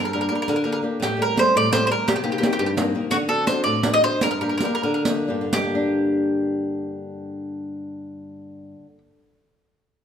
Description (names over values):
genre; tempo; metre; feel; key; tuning
italian folk, Italian serenade; 80-115 BPM (dotted quarters); 6/8; straight; G harmonic minor; A4 = 440 Hz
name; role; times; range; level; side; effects
mandolin; melody; 0.0-9.0 s; F#4 to Eb5; -22 LUFS; right 1 dB; none
flamenco guitar; accompaniment; 0.0-9.2 s; G2 to G4; -24 LUFS; left 2 dB; none
riq; percussion; 0.5-5.8 s; none; -27 LUFS; right 3 dB; none
room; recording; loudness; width
wet recital hall reverb, RT60 1.5 s; minimal, uncompressed stereo recording; -19 LUFS; side -8 dB against mid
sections
0.0-1.0 A section; 1.0-5.5 B section; 5.5-8.5 C section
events
slowing down 3.1-5.5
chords
0.0 Gm; 1.0 Am7; 2.1 Cm7; 3.1 D7; 4.2 Gm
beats
0.47 | 1.01 1.54 | 2.06 2.59 | 3.11 3.64 | 4.21 4.83 | 5.53 6.28 | 7.01 7.76